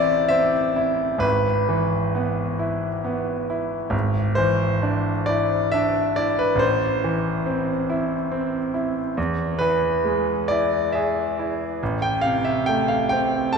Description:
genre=classical, romantic nocturne for solo piano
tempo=68 BPM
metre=3/4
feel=uneven beats, rubato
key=A minor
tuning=A4 = 440 Hz
part: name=clear concert grand piano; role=solo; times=0.0-13.6 s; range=G#1 to A5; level=-20 LUFS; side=equal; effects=none
room=wet church reverb, RT60 3.7 s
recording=recorded in a church or concert hall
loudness=-20 LUFS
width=side -5 dB against mid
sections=0.0-13.6 A section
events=none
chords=0.0 Am; 1.2 E/G#; 3.9 E7/G#; 6.6 Am; 9.2 E; 11.8 Am

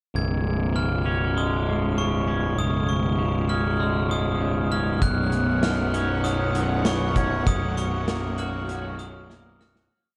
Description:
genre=post-rock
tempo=98 BPM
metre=4/4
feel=straight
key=unclear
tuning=A4 = 440 Hz
part: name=fuzz picked electric bass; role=bass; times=0.1-9.9 s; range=B0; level=-27 LUFS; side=equal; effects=overdrive
part: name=glockenspiel with brass mallets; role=arpeggios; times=0.2-9.9 s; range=C#6 to G#6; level=-33 LUFS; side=equal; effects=analog delay
part: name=twangy electric guitar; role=arpeggios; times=0.2-9.9 s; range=B1 to F#4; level=-30 LUFS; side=equal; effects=subtle chorus, analog delay
part: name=clear studio string section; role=sustained chords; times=5.0-9.9 s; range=A#3 to F#5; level=-34 LUFS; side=equal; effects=none
part: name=big rock drum kit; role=drums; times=5.0-9.9 s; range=hi-hat, kick drum, snare drum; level=-30 LUFS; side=equal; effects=vintage 12-bit sampler grit
room=moderate huge ambient reverb, RT60 8.7 s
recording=dreamy mix soaked in reverb, cassette tape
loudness=-24 LUFS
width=mono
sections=0.2-9.9 A section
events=fade-out 7.5-9.9; drum fill 9.3-9.9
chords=0.2 C#sus2/B; 5.0 Badd9; 7.5 F#/B

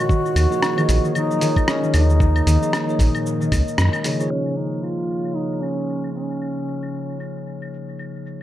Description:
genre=organic downtempo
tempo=114 BPM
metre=4/4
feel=swing 58% on 16ths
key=unclear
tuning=A4 = 439 Hz
part: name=bright bass bansuri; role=melody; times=0.0-7.2 s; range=Db4 to Gb4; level=-26 LUFS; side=right 1 dB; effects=dub echo
part: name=warbly tape-like pad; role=sustained chords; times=0.0-8.4 s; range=Db3 to Eb5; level=-30 LUFS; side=left 1 dB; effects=chorus, built-in reverb, sidechain pumping
part: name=concert harp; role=arpeggios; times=0.0-4.4 s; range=Bb2 to Ab3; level=-25 LUFS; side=left 3 dB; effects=dub echo
part: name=dusty soul sampler-style drum kit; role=drums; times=0.1-8.4 s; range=cabasa, claves, hi-hat, rim click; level=-25 LUFS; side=equal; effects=dub echo
part: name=electronic kick drum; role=drums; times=0.1-3.6 s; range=none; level=-19 LUFS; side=equal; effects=none
part: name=round analog bass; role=bass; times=0.4-3.9 s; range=Bb1 to Gb2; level=-16 LUFS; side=equal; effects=sidechain pumping
part: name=bell-like tine electric piano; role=accompaniment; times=0.5-8.4 s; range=F3 to Db5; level=-28 LUFS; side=right 2 dB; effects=lush chorus, sidechain pumping, dub echo
part: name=bronze singing bowl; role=texture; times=4.3-8.4 s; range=Db5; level=-35 LUFS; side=left 3 dB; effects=none
room=light reverb, digital ambience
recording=echo-heavy mix, low-pass filter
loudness=-18 LUFS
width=side -13 dB against mid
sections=0.0-4.3 A section; 4.3-8.4 B section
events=kick drops out 3.8-4.3; band accent 3.8; filter sweep 4.3-8.4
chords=0.1 Ebm7; 4.3 Db

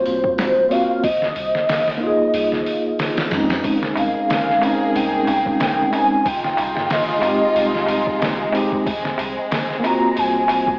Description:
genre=trip hop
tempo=92 BPM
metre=4/4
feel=swing 56% on 16ths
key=unclear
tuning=A4 = 442 Hz
part: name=pure breathy sine lead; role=melody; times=0.0-10.8 s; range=C5 to Bb5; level=-20 LUFS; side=equal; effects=phaser, ensemble chorus, cassette tape, dub echo
part: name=tine electric piano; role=accompaniment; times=0.0-10.8 s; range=Ab3 to Ab4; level=-21 LUFS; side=equal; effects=medium tremolo, harmonic tremolo, cassette tape, tape echo
part: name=soft 808-style bass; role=bass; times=0.0-10.8 s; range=F1 to F2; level=-38 LUFS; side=equal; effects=transformer saturation
part: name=trip hop sampler-style drum kit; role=drums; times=0.1-10.8 s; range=hi-hat, kick drum, snare drum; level=-25 LUFS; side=equal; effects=overdrive, cassette tape
part: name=warm chamber violin section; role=sustained chords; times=3.6-10.8 s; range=Ab3 to Ab4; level=-25 LUFS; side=equal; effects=cassette tape
part: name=darbuka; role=percussion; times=3.6-10.8 s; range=none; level=-30 LUFS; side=right 1 dB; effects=none
room=light reverb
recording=home recording on cassette, vinyl crackle, AM radio sound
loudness=-16 LUFS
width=side -33 dB against mid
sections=0.0-10.8 A section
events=none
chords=0.0 Ebm69 (rootless); 1.0 Bbm11/F; 6.3 Fm9; 8.9 Ab13/F

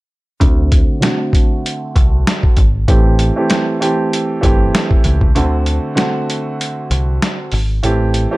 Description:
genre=hip hop, boom-bap hip-hop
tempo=97 BPM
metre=4/4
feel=swing 55% on 16ths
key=unclear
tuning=A4 = 440 Hz
part: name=warm upright piano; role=accompaniment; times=0.4-8.4 s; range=D3 to G4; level=-18 LUFS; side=right 1 dB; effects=cassette tape, high-pass filter, low-pass filter
part: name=deep dub picked electric bass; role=bass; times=0.4-8.3 s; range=G1 to D2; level=-15 LUFS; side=equal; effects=none
part: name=boom bap sampler-style drum kit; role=drums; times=0.4-8.3 s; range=hi-hat, kick drum, snare drum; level=-14 LUFS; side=equal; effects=none
room=little or no reverb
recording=dark, warm production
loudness=-12 LUFS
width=side -20 dB against mid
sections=0.4-5.4 A section; 5.4-8.4 B section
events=filter sweep on upright piano 0.4-5.4; break 5.4-8.4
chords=0.4 D7; 2.9 Am7; 5.4 D7; 7.8 Am7

